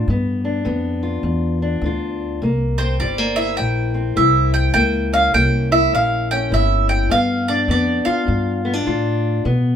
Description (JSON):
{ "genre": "acoustic country blues, solo or duo", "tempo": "102 BPM", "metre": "4/4", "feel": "swing 62% on 8ths", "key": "unclear", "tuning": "A4 = 440 Hz", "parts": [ { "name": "fingerpicked steel-string acoustic guitar", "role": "accompaniment", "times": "0.0-9.8 s", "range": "G2 to F4", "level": "-21 LUFS", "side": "left 4 dB", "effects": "none" }, { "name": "upright bass", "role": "bass", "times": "0.0-9.8 s", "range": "G1 to B2", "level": "-20 LUFS", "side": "equal", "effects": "none" }, { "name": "mandolin", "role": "melody", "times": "2.8-9.8 s", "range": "C5 to G5", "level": "-19 LUFS", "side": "right 3 dB", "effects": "none" } ], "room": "moderate studio ambience, RT60 0.5 s", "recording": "minimal, uncompressed stereo recording", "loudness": "-16 LUFS", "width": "side -8 dB against mid", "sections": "0.0-9.8 A section", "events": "none", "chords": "0.0 G7; 2.4 C7; 4.8 C#dim7; 7.1 G7" }